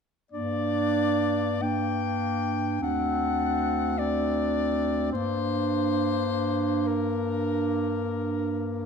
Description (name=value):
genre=classical, lyrical piece for single-reed quartet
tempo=44-53 BPM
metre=4/4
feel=rubato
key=G minor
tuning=A4 = 441 Hz
part: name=warm soprano saxophone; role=melody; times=0.3-8.9 s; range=Bb4 to G5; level=-29 LUFS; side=left 8 dB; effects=none
part: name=clear clarinet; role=second line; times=0.3-8.9 s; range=D4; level=-31 LUFS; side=right 14 dB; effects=none
part: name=warm clarinet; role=accompaniment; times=0.3-8.9 s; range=Bb3 to C4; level=-31 LUFS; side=left 3 dB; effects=none
part: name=mellow bass clarinet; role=bass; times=0.3-8.9 s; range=D2 to G2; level=-30 LUFS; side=right 2 dB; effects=none
room=moderate recital hall reverb, RT60 1.4 s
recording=none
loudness=-24 LUFS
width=side -6 dB against mid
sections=0.3-8.9 A section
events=none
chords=0.3 Gm; 2.8 D7; 5.1 Gm